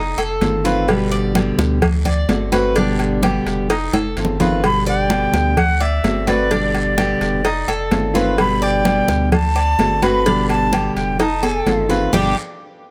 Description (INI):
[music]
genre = latin, Cuban son and guajira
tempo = 128 BPM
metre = 4/4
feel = straight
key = G major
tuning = A4 = 441 Hz
[part]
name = Cuban tres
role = arpeggios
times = 0.0-12.4 s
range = G3 to D5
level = -25 LUFS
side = equal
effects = none
[part]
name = pure sine sub bass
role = bass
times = 0.0-12.3 s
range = F1 to D2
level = -25 LUFS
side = equal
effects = none
[part]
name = agogo bells and timbales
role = percussion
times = 0.2-12.2 s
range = none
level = -28 LUFS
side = equal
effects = none
[part]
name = congas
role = percussion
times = 0.2-12.2 s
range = none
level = -25 LUFS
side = equal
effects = none
[part]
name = fingerpicked steel-string acoustic guitar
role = accompaniment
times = 0.4-12.3 s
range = G2 to G4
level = -22 LUFS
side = equal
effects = none
[part]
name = cowbell and bongos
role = percussion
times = 0.4-12.2 s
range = none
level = -27 LUFS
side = equal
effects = none
[part]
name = guiro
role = percussion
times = 0.4-12.2 s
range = none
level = -39 LUFS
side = equal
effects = none
[part]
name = breathy bright concert flute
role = melody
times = 4.7-12.4 s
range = D5 to D6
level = -23 LUFS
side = equal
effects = none
[sound]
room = light reverb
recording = close, detailed microphones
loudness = -17 LUFS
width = mono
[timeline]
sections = 0.0-4.6 A section; 4.6-12.1 B section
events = drum fill 3.9-4.6, 11.2-12.1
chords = 0.0 F7; 0.9 G; 1.8 D7; 2.8 G; 3.7 F7; 4.6 G; 5.6 D7; 6.5 G; 7.4 F7; 8.4 G; 9.3 D7; 10.3 G; 11.2 F7; 12.1 G